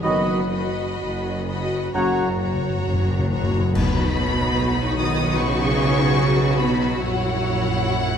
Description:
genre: classical, slow romantic movement for symphony orchestra.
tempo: 62-76 BPM.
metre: 4/4.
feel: rubato.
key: B major.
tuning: A4 = 440 Hz.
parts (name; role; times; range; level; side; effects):
rich studio violin section; melody; 0.0-8.2 s; F#5 to D#6; -28 LUFS; left 4 dB; none.
bright symphonic violin section; second line; 0.0-8.2 s; F#4 to D#5; -29 LUFS; left 5 dB; none.
mellow hollow concert flute; second line; 0.0-2.4 s; A#5 to B5; -32 LUFS; equal; none.
mellow oboe; second line; 0.0-2.3 s; C#5 to D#5; -32 LUFS; right 1 dB; none.
warm clarinet; second line; 0.0-2.3 s; F#4; -32 LUFS; left 5 dB; none.
rich symphonic viola section; accompaniment; 0.0-8.2 s; F#3 to F#4; -27 LUFS; left 1 dB; none.
mellow French horn section; sustained chords; 0.0-2.3 s; A#3 to F#4; -33 LUFS; left 3 dB; none.
warm trombone section; sustained chords; 0.0-2.3 s; C#3 to F#3; -29 LUFS; right 3 dB; none.
dark trumpet section; stabs; 0.0-2.3 s; D#5 to F#5; -29 LUFS; equal; none.
clear symphonic cello section; bass; 0.0-8.2 s; F#2 to D#3; -24 LUFS; right 2 dB; none.
rich symphonic double bass section; bass; 0.0-8.2 s; F#1 to B1; -27 LUFS; right 2 dB; none.
timpani; percussion; 2.0-3.7 s; F#2; -26 LUFS; left 2 dB; none.
clash cymbals and concert bass drum; percussion; 3.8-5.4 s; none; -27 LUFS; left 1 dB; none.
room: moderate concert hall reverb, RT60 2.3 s.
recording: dark, warm production.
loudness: -19 LUFS.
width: side -8 dB against mid.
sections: 0.0-3.7 A section; 3.7-8.2 B section.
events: timpani fill 1.9-3.7; band accent 3.7-4.6.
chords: 0.0 B/F#; 1.9 F#; 3.7 B; 7.0 F#7/A#.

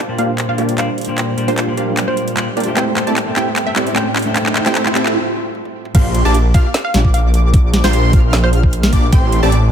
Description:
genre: future bass.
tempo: 151 BPM.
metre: 4/4.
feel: half-time.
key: Bb lydian.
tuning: A4 = 439 Hz.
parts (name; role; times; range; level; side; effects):
wide unison pluck; melody; 0.0-9.6 s; C5 to A5; -24 LUFS; right 1 dB; sidechain pumping, digital delay.
airy breathy pad; sustained chords; 0.0-5.9 s; A2 to C5; -26 LUFS; right 1 dB; chorus, sidechain pumping.
riser; sound effects; 1.8-5.2 s; none; -25 LUFS; right 2 dB; none.
clean electric guitar; accompaniment; 0.1-5.2 s; Bb2 to G5; -23 LUFS; left 2 dB; sidechain pumping, ping-pong delay.
supersaw stab; riff; 0.2-9.5 s; A3 to F5; -20 LUFS; right 1 dB; sidechain pumping, low-pass filter, ping-pong delay.
trap drum kit; drums; 0.2-9.6 s; crash cymbal, handclaps, hi-hat, snare drum, toms; -20 LUFS; equal; high-pass filter on snare, high-pass filter on hats, high-pass filter on toms, high-pass filter on cymbals.
airy dreamy lead; arpeggios; 5.9-9.5 s; C6 to F6; -24 LUFS; left 1 dB; chorus, sidechain pumping, ping-pong delay.
wide detuned saw bass; bass; 5.9-9.7 s; A1 to Bb1; -14 LUFS; equal; chorus, sidechain pumping.
electronic kick drum; drums; 5.9-9.2 s; none; -12 LUFS; equal; none.
room: light reverb, digital ambience.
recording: none.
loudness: -12 LUFS.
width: side -8 dB against mid.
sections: 0.0-5.9 A section; 5.9-9.7 B section.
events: build-up 0.0-5.9; drum fill 0.0-5.2, 5.5-5.9; filter sweep on supersaw synth 0.0-5.9; riser 1.8-5.2; break 5.2-5.9; drop 5.9-9.7.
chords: 0.0 Bb69; 2.8 Am7; 5.9 Bb69; 9.1 Am7.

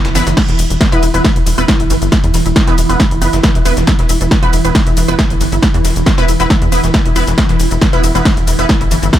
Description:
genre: driving peak-time techno.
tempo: 137 BPM.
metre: 4/4.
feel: straight.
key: E minor.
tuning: A4 = 439 Hz.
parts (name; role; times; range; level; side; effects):
resonant blip pluck; riff; 0.0-9.1 s; D3 to E4; -20 LUFS; equal; ensemble chorus, cassette tape, sidechain pumping, digital delay.
tight sequencer bass; bass; 0.0-9.1 s; E1 to E2; -16 LUFS; equal; tube saturation, sidechain pumping.
swarming drone; drone; 0.0-9.2 s; E3 to E4; -21 LUFS; right 2 dB; built-in reverb, sidechain pumping.
dusty soul sampler-style drum kit; drums; 0.0-9.2 s; hi-hat, snare drum; -28 LUFS; equal; none.
techno drum kit; drums; 0.0-9.2 s; crash cymbal, hi-hat, ride cymbal, shaker, snare drum; -17 LUFS; equal; overdrive.
rave stab; stabs; 0.1-8.7 s; B3 to B4; -19 LUFS; right 2 dB; chorus, built-in reverb, phaser, sidechain pumping, dub echo.
electronic kick drum; drums; 0.4-9.2 s; none; -13 LUFS; equal; overdrive.
room: little or no reverb.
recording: none.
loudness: -10 LUFS.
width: side -12 dB against mid.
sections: 0.0-9.2 A section.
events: none.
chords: 0.0 E5.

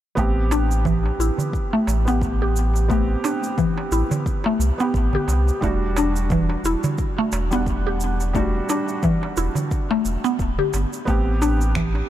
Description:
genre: organic downtempo.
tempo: 88 BPM.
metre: 4/4.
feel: swing 56% on 16ths.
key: A dorian.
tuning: A4 = 440 Hz.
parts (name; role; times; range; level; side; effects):
felt-muted upright piano; accompaniment; 0.2-12.1 s; G3 to F#5; -27 LUFS; right 3 dB; sidechain pumping, tape echo.
mallet-like synth pluck; arpeggios; 0.2-11.9 s; E3 to G4; -23 LUFS; left 1 dB; lush chorus, tape echo.
warm sub bass; bass; 0.2-12.0 s; D1 to C2; -21 LUFS; equal; none.
electronic kick drum; drums; 0.2-11.9 s; none; -26 LUFS; equal; none.
electronic shaker and finger snaps; drums; 0.2-11.9 s; none; -34 LUFS; right 4 dB; none.
darbuka; percussion; 0.5-12.1 s; none; -29 LUFS; right 3 dB; none.
room: light reverb.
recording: dark, warm production.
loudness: -19 LUFS.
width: side -12 dB against mid.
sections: 0.2-12.1 A section.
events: none.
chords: 0.2 Am7; 5.6 Em7; 11.1 Am7.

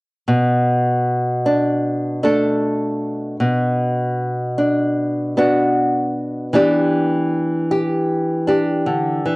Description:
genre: folk.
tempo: 77 BPM.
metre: 4/4.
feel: straight.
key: B minor.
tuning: A4 = 441 Hz.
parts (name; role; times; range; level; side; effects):
nylon-string guitar; accompaniment; 0.3-9.4 s; B2 to A4; -16 LUFS; equal; none.
room: moderate studio reverb, RT60 0.5 s.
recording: home recording on cassette.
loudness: -16 LUFS.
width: side -24 dB against mid.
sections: 0.3-9.4 A section.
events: none.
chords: 0.3 Bm7; 3.4 Bm; 6.5 Em7.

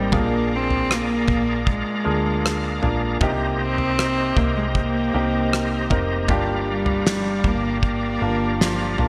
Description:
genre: pop ballad.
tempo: 78 BPM.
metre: 4/4.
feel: straight.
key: C minor.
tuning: A4 = 442 Hz.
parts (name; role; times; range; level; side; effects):
warm cello; melody; 0.0-9.1 s; F3 to C4; -26 LUFS; equal; none.
bright upright piano; accompaniment; 0.0-9.1 s; G2 to Bb4; -28 LUFS; equal; none.
bright tonewheel organ; sustained chords; 0.0-9.1 s; G4 to Bb5; -31 LUFS; equal; overdrive, chorus vibrato, fast rotary speaker.
woody fretless electric bass; bass; 0.0-9.1 s; F1 to D2; -29 LUFS; equal; subtle chorus.
damped 70s drum kit; drums; 0.1-9.1 s; kick drum, rim click, snare drum, toms; -26 LUFS; equal; gated reverb.
room: moderate lush hall reverb, RT60 2.8 s.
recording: bright 1980s-style digital production.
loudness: -21 LUFS.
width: mono.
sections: 0.0-9.1 A section.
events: none.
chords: 0.1 Bb7; 3.2 Cm7; 6.3 Gm7.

